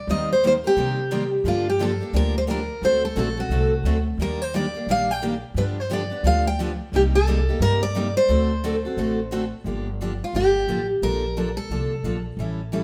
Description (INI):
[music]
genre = acoustic string swing (jazz manouche)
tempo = 175 BPM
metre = 4/4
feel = swing 61% on 8ths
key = G minor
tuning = A4 = 442 Hz
[part]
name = picked steel-string acoustic guitar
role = melody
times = 0.0-12.2 s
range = F4 to G5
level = -25 LUFS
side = equal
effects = none
[part]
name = picked steel-string acoustic guitar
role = accompaniment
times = 0.1-12.8 s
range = C3 to Bb4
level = -30 LUFS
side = equal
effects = none
[part]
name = picked steel-string acoustic guitar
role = accompaniment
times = 0.1-9.4 s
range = C3 to C5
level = -35 LUFS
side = equal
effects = none
[part]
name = upright bass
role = bass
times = 0.1-12.8 s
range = G1 to C3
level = -28 LUFS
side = equal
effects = none
[sound]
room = moderate stone room reverb, RT60 1.1 s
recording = band playing live in one room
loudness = -23 LUFS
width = mono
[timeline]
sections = 0.0-9.7 A section; 9.7-12.8 B section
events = none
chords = 0.1 Cm7/Eb; 1.5 Gm7; 2.8 D7; 4.2 Ebmaj7; 5.6 G7; 6.9 Cm7; 8.3 D7; 9.7 Gm7; 11.0 Bbmaj7